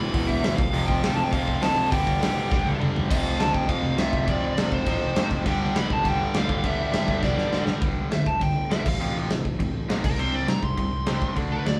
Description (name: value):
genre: punk rock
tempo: 203 BPM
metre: 4/4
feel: straight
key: unclear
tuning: A4 = 440 Hz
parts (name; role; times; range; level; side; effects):
- biting lead guitar; melody; 0.0-11.8 s; Bb4 to C6; -30 LUFS; equal; overdrive
- cranked stack guitar; riff; 0.0-11.8 s; E2 to D4; -31 LUFS; equal; overdrive
- distorted electric guitar; riff; 0.0-3.1, 5.5-7.8 s; E2 to G3; -36 LUFS; equal; overdrive
- distorted electric guitar; riff; 0.0-7.8 s; E2 to G3; -37 LUFS; equal; none
- fuzz picked electric bass; bass; 0.0-11.8 s; E1 to D2; -33 LUFS; equal; overdrive
- big rock drum kit; drums; 0.1-11.7 s; crash cymbal, hi-hat, kick drum, snare drum, toms; -28 LUFS; equal; none
room: moderate studio reverb, RT60 0.9 s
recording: band playing live in one room, studio reverb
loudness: -24 LUFS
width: mono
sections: 0.0-3.1 A section; 3.1-7.8 B section; 7.8-11.8 C section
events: drum fill 2.5-3.1, 7.2-7.8; lead electric guitar solo 7.8-11.8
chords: 0.0 E5; 0.6 F; 1.9 G5; 3.1 F5; 5.5 G5; 8.9 F/A; 10.0 C5